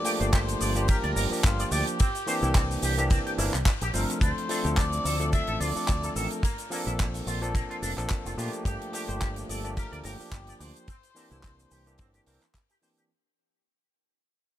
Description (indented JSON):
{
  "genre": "nu-disco, nu disco",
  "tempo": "108 BPM",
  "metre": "4/4",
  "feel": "swing 55% on 16ths",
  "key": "unclear",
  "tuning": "A4 = 440 Hz",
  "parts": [
    { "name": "muted trumpet section", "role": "melody", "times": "0.0-12.6 s", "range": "F4 to E5", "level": "-35 LUFS", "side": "left 2 dB", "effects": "tape echo" },
    { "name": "barky tine electric piano", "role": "accompaniment", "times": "0.0-13.1 s", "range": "E3 to Bb4", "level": "-33 LUFS", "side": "equal", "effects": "sidechain pumping, ping-pong delay" },
    { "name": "damped 70s drum kit", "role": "drums", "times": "0.0-13.1 s", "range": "handclaps, hi-hat, ride cymbal, shaker", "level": "-33 LUFS", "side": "equal", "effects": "none" },
    { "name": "electric guitar with an envelope filter", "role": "riff", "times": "0.1-13.0 s", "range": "C3 to G5", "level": "-35 LUFS", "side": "right 1 dB", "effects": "lush chorus" },
    { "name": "fingered electric bass with an envelope filter", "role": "bass", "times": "0.2-12.4 s", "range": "F1 to Bb2", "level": "-31 LUFS", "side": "equal", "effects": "none" },
    { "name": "kick drum", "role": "drums", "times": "0.3-12.7 s", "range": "none", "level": "-25 LUFS", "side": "equal", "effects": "none" }
  ],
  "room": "small room ambience",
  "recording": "none",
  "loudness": "-25 LUFS",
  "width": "side -12 dB against mid",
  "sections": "0.0-13.1 A section",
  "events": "drop 0.0-13.1; fade-out 4.2-13.1",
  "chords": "0.0 Gm9; 2.0 C9; 4.2 Dm7; 6.4 Bbmaj9; 8.7 Gm9; 10.9 C9"
}